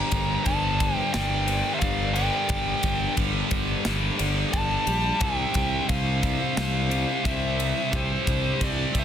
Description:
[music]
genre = heavy metal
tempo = 88 BPM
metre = 4/4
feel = straight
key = unclear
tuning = A4 = 444 Hz
[part]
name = high-gain lead guitar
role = melody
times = 0.0-9.0 s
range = C5 to Bb5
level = -29 LUFS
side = left 1 dB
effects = distortion
[part]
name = high-gain lead guitar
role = second line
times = 0.0-9.0 s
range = G4 to G5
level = -37 LUFS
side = right 4 dB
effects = distortion
[part]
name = dark symphonic string section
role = sustained chords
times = 0.0-9.0 s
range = C3 to C5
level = -40 LUFS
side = right 1 dB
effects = none
[part]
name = heavy high-gain guitar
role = riff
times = 0.0-9.0 s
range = G2 to C4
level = -30 LUFS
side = left 14 dB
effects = distortion
[part]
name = scooped high-gain guitar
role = riff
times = 0.0-9.0 s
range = G2 to C4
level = -29 LUFS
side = right 12 dB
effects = distortion
[part]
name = fuzz fingered electric bass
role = bass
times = 0.1-9.0 s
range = G1 to C2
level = -28 LUFS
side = equal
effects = overdrive
[part]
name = tight metal drum kit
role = drums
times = 0.1-9.0 s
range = kick drum, ride cymbal, snare drum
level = -30 LUFS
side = equal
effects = none
[sound]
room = small room ambience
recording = dense, heavily limited modern master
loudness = -22 LUFS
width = side -9 dB against mid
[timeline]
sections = 0.0-9.0 A section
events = half time 0.0-9.0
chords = 0.0 Gm; 5.2 C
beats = 0.46 1.14 1.82 | 2.50 3.18 3.86 4.54 | 5.22 5.90 6.58 7.25 | 7.93 8.61

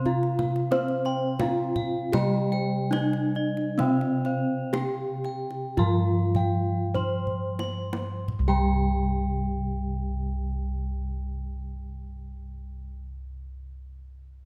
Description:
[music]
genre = Javanese gamelan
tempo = 42-91 BPM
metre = 4/4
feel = straight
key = unclear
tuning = A4 = 441 Hz
[part]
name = gamelan-type bronze metallophone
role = melody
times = 0.0-13.0 s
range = C4 to C5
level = -32 LUFS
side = equal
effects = none
[part]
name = gamelan-type bronze metallophone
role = accompaniment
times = 0.0-13.0 s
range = C3 to C4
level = -34 LUFS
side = equal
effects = none
[part]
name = gamelan-type bossed gongs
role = arpeggios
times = 0.0-13.0 s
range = C5 to C6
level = -38 LUFS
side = equal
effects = none
[part]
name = gamelan-type bronze metallophone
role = arpeggios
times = 0.0-13.0 s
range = C5 to C6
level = -39 LUFS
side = equal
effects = none
[part]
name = gamelan-type bossed gongs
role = bass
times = 0.0-12.9 s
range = C2 to C5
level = -32 LUFS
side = equal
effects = none
[part]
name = kendang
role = percussion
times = 0.1-8.9 s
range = none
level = -37 LUFS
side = equal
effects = none
[sound]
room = light reverb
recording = close, detailed microphones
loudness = -27 LUFS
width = mono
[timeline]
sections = 0.0-8.3 A section; 8.3-13.9 B section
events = slowing down 0.7-8.3; drum fill 7.3-8.3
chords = none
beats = 0.06 | 0.72 1.40 2.14 2.93 | 3.79 4.74 5.78 6.95 | 8.28 9.70 11.11 12.53

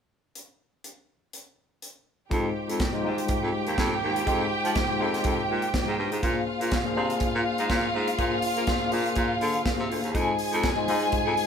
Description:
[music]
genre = disco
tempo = 122 BPM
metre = 4/4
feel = straight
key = F dorian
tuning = A4 = 440 Hz
[part]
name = modern studio drum kit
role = drums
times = 0.4-11.5 s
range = hi-hat, kick drum, snare drum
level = -30 LUFS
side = right 1 dB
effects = none
[part]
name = warm studio string section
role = second line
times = 2.3-11.5 s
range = F4 to Ab5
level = -28 LUFS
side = equal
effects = none
[part]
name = tine electric piano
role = accompaniment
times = 2.3-11.5 s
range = G3 to C5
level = -30 LUFS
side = left 4 dB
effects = medium tremolo
[part]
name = clear baritone saxophone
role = bass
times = 2.3-11.3 s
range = D2 to Bb3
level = -29 LUFS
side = right 1 dB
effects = none
[sound]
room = moderate studio reverb, RT60 0.7 s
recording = band playing live in one room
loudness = -23 LUFS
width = side -7 dB against mid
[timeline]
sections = 0.4-2.3 A section; 2.3-11.5 B section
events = none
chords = 0.4 N.C.; 2.3 Fm7; 6.2 Bb9; 10.1 Fm7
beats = | 0.35 0.84 1.33 1.82 | 2.31 2.80 3.29 3.78 | 4.27 4.76 5.25 5.74 | 6.23 6.72 7.21 7.70 | 8.19 8.68 9.17 9.66 | 10.15 10.64 11.13

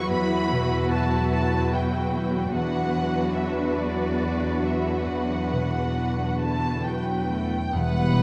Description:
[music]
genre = cinematic, emotional film score for orchestra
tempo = 45-50 BPM (dotted quarters)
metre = 6/8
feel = rubato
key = unclear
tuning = A4 = 440 Hz
[part]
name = muted studio violin section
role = melody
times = 0.0-8.2 s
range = D5 to C#6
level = -34 LUFS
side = equal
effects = none
[part]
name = muted symphonic violin section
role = second line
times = 0.0-8.2 s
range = F#4 to B4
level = -33 LUFS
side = equal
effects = none
[part]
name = muted symphonic viola section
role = accompaniment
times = 0.0-8.2 s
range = D3 to E4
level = -31 LUFS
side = equal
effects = none
[part]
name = concert harp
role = arpeggios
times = 0.0-8.2 s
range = E2 to B4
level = -32 LUFS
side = equal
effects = none
[part]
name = muted symphonic cello section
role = bass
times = 0.0-8.2 s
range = E2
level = -30 LUFS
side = equal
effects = none
[part]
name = muted symphonic double bass section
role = bass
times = 7.7-8.2 s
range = E1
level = -25 LUFS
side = equal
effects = none
[sound]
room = moderate scoring stage reverb, RT60 1.6 s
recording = close, detailed microphones, vinyl crackle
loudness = -25 LUFS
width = mono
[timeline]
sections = 0.0-7.7 A section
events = none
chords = 0.0 Emadd9; 2.5 Bm/E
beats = | 0.10 1.31 | 2.53 3.78 | 5.08 6.42 | 7.74

